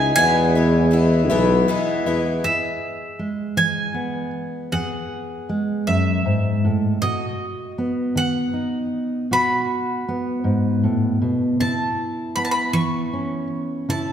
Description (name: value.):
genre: folk.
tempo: 52 BPM (dotted quarters).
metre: 6/8.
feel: straight.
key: E major.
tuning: A4 = 440 Hz.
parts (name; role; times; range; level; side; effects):
bowl-back mandolin; melody; 0.0-14.1 s; D#5 to C#6; -23 LUFS; right 1 dB; none.
picked twelve-string acoustic guitar; accompaniment; 0.0-2.5 s; E2 to E4; -21 LUFS; left 4 dB; none.
mellow tuba; bass; 0.0-2.4 s; B1 to E2; -19 LUFS; right 1 dB; none.
fingerpicked steel-string acoustic guitar; accompaniment; 2.4-14.1 s; E2 to G#4; -22 LUFS; equal; none.
room: wet concert hall reverb, RT60 2.0 s.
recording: recorded in a church or concert hall.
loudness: -19 LUFS.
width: side -9 dB against mid.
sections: 0.0-2.4 A section; 2.4-14.1 B section.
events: none.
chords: 0.2 E; 7.0 B; 11.6 Aadd9/C#.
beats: | 0.15 1.29 | 2.44 3.58 | 4.73 5.87 | 7.02 8.17 | 9.31 10.46 | 11.61 12.75 | 13.90.